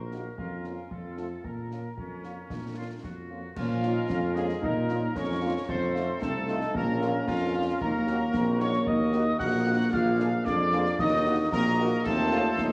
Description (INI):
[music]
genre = military-style march for wind band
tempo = 113 BPM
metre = 2/4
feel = straight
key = Bb minor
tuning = A4 = 442 Hz
[part]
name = warm trumpet section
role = melody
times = 0.0-12.7 s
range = F4 to Gb5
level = -37 LUFS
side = equal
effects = none
[part]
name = warm woodwind section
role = second line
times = 0.0-12.7 s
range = C4 to Eb5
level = -41 LUFS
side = equal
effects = none
[part]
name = warm tuba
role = bass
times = 0.0-12.7 s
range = Bb1 to Bb2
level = -33 LUFS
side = equal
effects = none
[part]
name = warm French horn section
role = accompaniment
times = 0.1-12.4 s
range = F3 to Ab4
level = -39 LUFS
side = equal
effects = none
[part]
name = concert snare drum, concert bass drum and clash cymbals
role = drums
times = 0.1-12.7 s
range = none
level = -40 LUFS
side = equal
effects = none
[part]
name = mellow euphonium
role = second line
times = 3.6-12.7 s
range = F3 to Gb4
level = -35 LUFS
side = equal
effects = none
[part]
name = wooden piccolo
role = second line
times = 3.6-12.7 s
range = F5 to Gb6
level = -36 LUFS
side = equal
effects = none
[part]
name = warm trombone section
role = sustained chords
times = 3.6-12.7 s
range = A3 to F4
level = -34 LUFS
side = equal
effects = none
[sound]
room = wet concert hall reverb, RT60 2.3 s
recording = worn, warbling old tape, cassette tape, warbly pitch drift, small room ambience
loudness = -27 LUFS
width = mono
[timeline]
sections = 0.0-3.6 A section; 3.6-12.7 A section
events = none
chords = 0.4 Bbm/F; 0.9 F; 1.4 Bbm; 5.7 F7; 6.8 Bbm; 7.8 Ebm; 9.9 Bb7; 11.0 Ebm; 12.1 F7/Eb